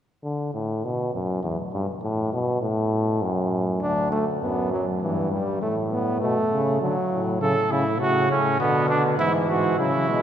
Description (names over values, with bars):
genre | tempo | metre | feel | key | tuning
classical, imitative canzona for brass ensemble | 101 BPM | 3/4 | straight | D major | A4 = 438 Hz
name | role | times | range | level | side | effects
warm euphonium | bass | 0.2-10.2 s | D2 to D3 | -24 LUFS | left 1 dB | none
clear trombone | accompaniment | 3.8-10.2 s | A2 to D4 | -24 LUFS | equal | none
mellow trumpet | second line | 7.4-10.2 s | B3 to A4 | -22 LUFS | right 2 dB | none
room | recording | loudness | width
wet cathedral reverb, RT60 5.1 s | heard from further back in the room | -21 LUFS | side -9 dB against mid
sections
0.2-3.8 A section; 3.8-10.2 B section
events
none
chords
0.2 D; 1.4 Em; 2.0 Asus2; 3.2 N.C.; 3.8 D; 5.0 Em/G; 5.6 A; 6.8 D; 7.4 A; 8.6 Bm; 9.2 E/G#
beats
| 0.23 0.84 1.44 | 2.03 2.62 3.22 | 3.82 4.43 5.03 | 5.63 6.22 6.82 | 7.41 8.00 8.60 | 9.19 9.79